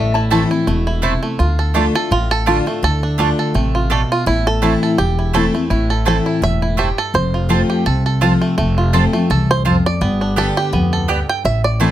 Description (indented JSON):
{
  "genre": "bluegrass",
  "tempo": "167 BPM",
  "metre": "4/4",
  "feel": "swing 55% on 8ths",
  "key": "unclear",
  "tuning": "A4 = 441 Hz",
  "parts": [
    { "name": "bluegrass banjo", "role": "melody", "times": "0.0-11.9 s", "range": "F3 to G5", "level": "-20 LUFS", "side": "right 3 dB", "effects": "none" },
    { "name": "picked steel-string acoustic guitar", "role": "accompaniment", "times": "0.0-11.9 s", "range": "E2 to G4", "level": "-18 LUFS", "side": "left 2 dB", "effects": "none" },
    { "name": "upright bass", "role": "bass", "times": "0.0-11.9 s", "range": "E1 to D2", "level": "-18 LUFS", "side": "equal", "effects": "none" },
    { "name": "mandolin", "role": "stabs", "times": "0.3-11.9 s", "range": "A3 to A5", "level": "-20 LUFS", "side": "right 7 dB", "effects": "none" }
  ],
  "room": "light reverb",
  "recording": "close, detailed microphones",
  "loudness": "-14 LUFS",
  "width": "side -12 dB against mid",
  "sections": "0.0-1.4 A section; 1.4-11.9 B section",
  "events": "five-string banjo solo 1.4-11.9",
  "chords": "0.0 Am; 1.4 Dm; 4.3 Am; 7.1 F; 10.0 G"
}